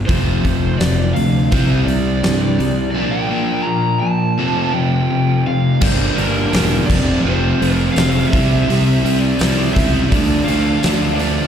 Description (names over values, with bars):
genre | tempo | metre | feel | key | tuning
classic rock | 84 BPM | 4/4 | straight | unclear | A4 = 440 Hz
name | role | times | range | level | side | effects
crunchy overdriven guitar | riff | 0.0-11.5 s | F2 to D4 | -19 LUFS | left 6 dB | none
fuzz fingered electric bass | bass | 0.0-11.4 s | E1 to G2 | -18 LUFS | equal | overdrive
lead guitar through a small cranked amp | melody | 0.1-11.5 s | Bb4 to Bb5 | -23 LUFS | equal | overdrive, slapback echo
overdriven semi-hollow guitar | riff | 0.1-11.5 s | F2 to F4 | -20 LUFS | right 9 dB | slapback echo
huge arena drum kit | drums | 0.1-11.4 s | crash cymbal, hi-hat, kick drum, snare drum | -21 LUFS | equal | none
overdriven tonewheel organ | sustained chords | 5.8-11.5 s | G3 to D5 | -33 LUFS | left 1 dB | none
tambourine | percussion | 6.5-11.0 s | none | -34 LUFS | left 5 dB | none
room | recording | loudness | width
small room ambience | live gig heard through the venue's PA, recital hall reverb | -14 LUFS | side -8 dB against mid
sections
0.0-5.8 A section; 5.8-11.5 B section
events
none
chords
0.1 F; 1.5 C; 3.0 Bb; 4.4 F; 5.8 Gm; 6.9 F; 8.3 C; 10.1 Dm